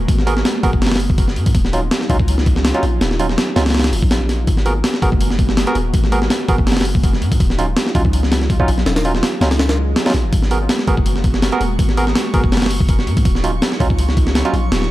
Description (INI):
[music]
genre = drum and bass, jungle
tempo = 164 BPM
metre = 4/4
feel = swing 54% on 16ths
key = G# minor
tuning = A4 = 440 Hz
[part]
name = airy breathy pad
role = sustained chords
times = 0.0-14.9 s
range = F#3 to F#4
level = -25 LUFS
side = equal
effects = chorus
[part]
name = long sustained 808-style bass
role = bass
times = 0.0-14.9 s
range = D#1 to G#2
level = -19 LUFS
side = equal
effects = none
[part]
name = breakbeat sampler-style drum kit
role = drums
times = 0.1-14.9 s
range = hi-hat, kick drum, snare drum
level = -16 LUFS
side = equal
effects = overdrive
[part]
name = barky tine electric piano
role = stabs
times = 0.3-14.5 s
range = F#3 to A#4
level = -23 LUFS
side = right 2 dB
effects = medium stereo tremolo, dub echo
[part]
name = swell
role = sound effects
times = 9.8-10.3 s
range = none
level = -31 LUFS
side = right 4 dB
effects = none
[part]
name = drifting glass-harmonics texture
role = texture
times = 10.8-14.9 s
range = C#6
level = -33 LUFS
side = right 6 dB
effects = chorus, built-in reverb
[sound]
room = little or no reverb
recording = dry, gritty hardware recording, transformer saturation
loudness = -14 LUFS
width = side -16 dB against mid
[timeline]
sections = 0.0-14.9 A section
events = none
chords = 0.0 G#m9; 1.5 D#m9; 4.5 G#m9; 7.4 D#m9; 10.3 G#m9; 13.3 D#m9